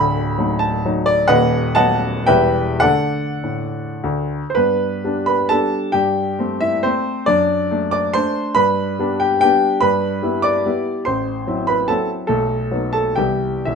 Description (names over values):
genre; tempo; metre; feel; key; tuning
classical, romantic triple-time dance for piano with dotted rhythms; 94-154 BPM; 3/4; rubato; G major, E minor from 9.8 s; A4 = 439 Hz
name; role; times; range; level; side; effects
warm baby grand piano; solo; 0.0-13.8 s; D1 to D6; -16 LUFS; equal; none
room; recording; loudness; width
moderate large studio reverb, RT60 0.8 s; minimal, uncompressed stereo recording; -16 LUFS; side -5 dB against mid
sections
0.0-4.6 A section; 4.6-13.8 B section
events
none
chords
0.0 D; 1.3 B7/D#; 2.3 Em; 2.8 D; 4.6 G; 5.9 Am7/G; 7.3 D/F#; 8.6 G; 9.8 Em/G; 11.1 F#m7b5/A; 12.3 B7; 13.2 Cmaj7